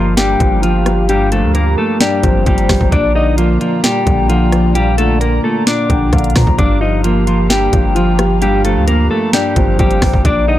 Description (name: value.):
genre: hip hop, trap.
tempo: 131 BPM.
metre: 4/4.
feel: half-time.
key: G minor.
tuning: A4 = 439 Hz.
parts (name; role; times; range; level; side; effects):
clean electric guitar; melody; 0.0-10.6 s; F3 to Eb5; -16 LUFS; equal; none.
felt-muted upright piano; accompaniment; 0.0-10.6 s; G2 to Bb3; -18 LUFS; left 1 dB; none.
airy breathy pad; sustained chords; 0.0-10.6 s; F4 to Bb5; -24 LUFS; right 3 dB; chorus.
long sustained 808-style bass; bass; 0.0-10.6 s; G1 to Bb2; -16 LUFS; equal; none.
soft octave-layered synth lead; second line; 0.2-10.6 s; C5 to Bb5; -22 LUFS; left 6 dB; chorus, tremolo, tape echo.
trap drum kit; drums; 0.2-10.4 s; hi-hat, kick drum, rim click, snare drum; -15 LUFS; equal; none.
room: digital ambience.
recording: dark, warm production.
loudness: -11 LUFS.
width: side -13 dB against mid.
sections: 0.0-10.6 A section.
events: none.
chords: 0.0 Gm7; 2.9 Bb; 6.6 Gm7.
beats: 0.17 0.63 | 1.09 1.55 2.00 2.46 | 2.92 3.38 3.84 4.29 | 4.75 5.21 5.67 6.13 | 6.58 7.04 7.50 7.96 | 8.42 8.88 9.33 9.79 | 10.25.